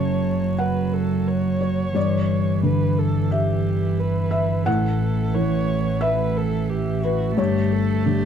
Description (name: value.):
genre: neoclassical piano and strings.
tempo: 88 BPM.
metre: 4/4.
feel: rubato.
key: unclear.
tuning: A4 = 440 Hz.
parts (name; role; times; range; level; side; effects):
dark cello; second line; 0.0-8.3 s; E3 to A3; -25 LUFS; right 6 dB; none.
dark viola; accompaniment; 0.0-8.3 s; F#4 to C#5; -29 LUFS; right 2 dB; none.
felt-muted upright piano; accompaniment; 0.0-8.3 s; F#2 to A5; -23 LUFS; left 2 dB; none.
dark double bass; bass; 0.0-8.3 s; F#1 to A1; -25 LUFS; left 1 dB; none.
room: moderate small room reverb, RT60 0.6 s.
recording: none.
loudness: -19 LUFS.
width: side -8 dB against mid.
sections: 0.0-8.3 A section.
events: none.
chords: 0.0 F#m; 2.0 Em7/G; 4.7 A; 7.4 Gsus2.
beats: 0.58 1.27 | 1.95 2.64 3.31 3.99 | 4.67 5.35 6.02 6.70 | 7.38 8.06.